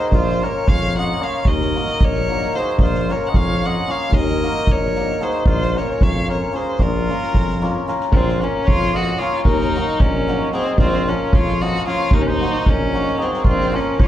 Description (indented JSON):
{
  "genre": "balkan folk, Balkan wedding band",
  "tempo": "225 BPM (eighths)",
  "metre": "5/8",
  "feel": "straight",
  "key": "Bb minor",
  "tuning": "A4 = 438 Hz",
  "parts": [
    { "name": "clear violin", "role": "melody", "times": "0.0-14.1 s", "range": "C4 to Gb5", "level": "-23 LUFS", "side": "left 1 dB", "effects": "plate reverb, slapback echo" },
    { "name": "mellow trumpet", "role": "second line", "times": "0.0-14.1 s", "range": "F4 to Eb5", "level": "-26 LUFS", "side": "right 1 dB", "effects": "plate reverb, slapback echo, tape echo" },
    { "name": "hammered dulcimer", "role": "accompaniment", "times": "0.0-14.1 s", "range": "F3 to Bb4", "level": "-25 LUFS", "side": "left 2 dB", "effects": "plate reverb, slapback echo" },
    { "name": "warm tuba", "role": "bass", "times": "0.1-14.1 s", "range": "Bb1 to F2", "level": "-22 LUFS", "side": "equal", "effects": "none" },
    { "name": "soft-mallet drum kit", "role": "percussion", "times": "0.1-14.1 s", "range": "kick drum, snare drum", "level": "-20 LUFS", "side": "equal", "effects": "none" }
  ],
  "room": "little or no reverb",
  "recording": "live gig heard through the venue's PA, club reverb",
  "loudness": "-16 LUFS",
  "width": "side -12 dB against mid",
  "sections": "0.0-8.1 A section; 8.1-14.1 A section",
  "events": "none",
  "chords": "0.1 Bbm; 1.5 Ebm; 2.8 Bbm; 4.1 Ebm; 5.5 Bbm; 9.5 Ebm; 10.8 Bbm; 12.1 Ebm; 13.4 Bbm",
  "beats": "| 0.12 0.39 0.66 0.92 1.19 | 1.46 1.73 1.99 2.26 2.53 | 2.79 3.06 3.33 3.60 3.86 | 4.13 4.40 4.66 4.93 5.20 | 5.46 5.73 6.00 6.26 6.53 | 6.79 7.06 7.33 7.59 7.86 | 8.12 8.39 8.66 8.92 9.19 | 9.46 9.72 9.99 10.25 10.52 | 10.78 11.05 11.32 11.58 11.85 | 12.11 12.38 12.64 12.91 13.18 | 13.44 13.71 13.97"
}